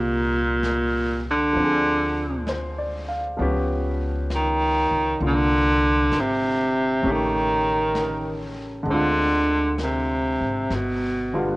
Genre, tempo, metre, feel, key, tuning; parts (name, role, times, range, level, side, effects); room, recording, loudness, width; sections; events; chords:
jazz ballad; 66 BPM; 4/4; swing 68% on 8ths; A4 = 443 Hz
clear baritone saxophone; melody; 0.0-11.6 s; Bb2 to Eb3; -21 LUFS; right 1 dB; cassette tape
clear baby grand piano; accompaniment; 0.0-11.6 s; C#3 to F5; -28 LUFS; equal; cassette tape
upright bass; bass; 0.0-11.6 s; G1 to D2; -28 LUFS; left 1 dB
vintage brush drum kit; drums; 0.6-11.6 s; brushed snare drum, hi-hat, snare drum; -38 LUFS; left 1 dB
light reverb, small room ambience; home recording on cassette, nothing above 10.7 kHz; -20 LUFS; side -21 dB against mid
0.0-11.6 A section
0.0 Abmaj9; 1.6 Dm7b5; 3.4 Db7#11; 5.2 C9sus4; 7.0 A7; 8.9 Dm7b5; 10.7 G7